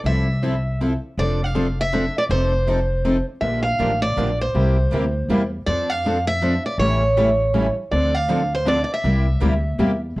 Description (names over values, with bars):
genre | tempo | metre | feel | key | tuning
acoustic string swing (jazz manouche) | 160 BPM | 3/4 | swing 63% on 8ths | F major | A4 = 440 Hz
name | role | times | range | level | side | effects
picked steel-string acoustic guitar | accompaniment | 0.0-9.9 s | C3 to A4 | -27 LUFS | right 2 dB | none
upright bass | bass | 0.0-10.2 s | F1 to F2 | -22 LUFS | equal | none
picked steel-string acoustic guitar | melody | 0.1-10.0 s | C5 to F5 | -22 LUFS | right 1 dB | plate reverb
picked steel-string acoustic guitar | accompaniment | 0.1-10.2 s | C3 to A4 | -24 LUFS | left 2 dB | none
room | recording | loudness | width
moderate small room reverb, RT60 0.5 s | worn, warbling old tape, cassette tape, warbly pitch drift | -18 LUFS | side -19 dB against mid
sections
0.0-1.2 A section; 1.2-10.2 B section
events
none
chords
0.0 Fmaj7; 1.2 F6; 2.3 F7; 3.4 Bb6; 4.5 C7; 5.7 F6; 6.8 A7; 7.9 Dm7; 9.0 C7